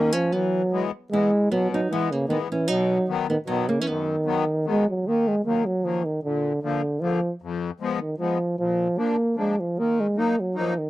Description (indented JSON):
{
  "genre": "alpine folk, alpine dance band",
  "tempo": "153 BPM",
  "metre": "3/4",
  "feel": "straight",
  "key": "B major, Eb harmonic minor from 5.1 s",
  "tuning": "A4 = 438 Hz",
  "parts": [
    { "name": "mellow euphonium", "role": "melody", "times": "0.0-10.9 s", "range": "B2 to Bb3", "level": "-22 LUFS", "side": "right 1 dB", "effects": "none" },
    { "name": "nylon-string guitar", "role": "second line", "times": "0.0-4.9 s", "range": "F#3 to E4", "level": "-29 LUFS", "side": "right 2 dB", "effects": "none" },
    { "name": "accordion", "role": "accompaniment", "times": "0.0-10.7 s", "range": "F2 to Eb4", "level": "-29 LUFS", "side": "left 6 dB", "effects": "light tremolo tuning" }
  ],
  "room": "light reverb",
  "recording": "dry, close 1970s-style studio recording",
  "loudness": "-22 LUFS",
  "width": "side -16 dB against mid",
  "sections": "0.0-5.1 A section; 5.1-10.9 B section",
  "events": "none",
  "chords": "0.3 E; 2.7 B; 5.1 Ebm; 6.2 Bb; 7.4 Fdim; 8.6 Bb; 9.8 Ebm",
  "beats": "| 0.33 0.72 1.12 | 1.51 1.90 2.29 | 2.68 3.08 3.47 | 3.86 4.26 4.66 | 5.06 5.45 5.84 | 6.23 6.62 7.02 | 7.41 7.80 8.19 | 8.58 8.97 9.37 | 9.77 10.16 10.55"
}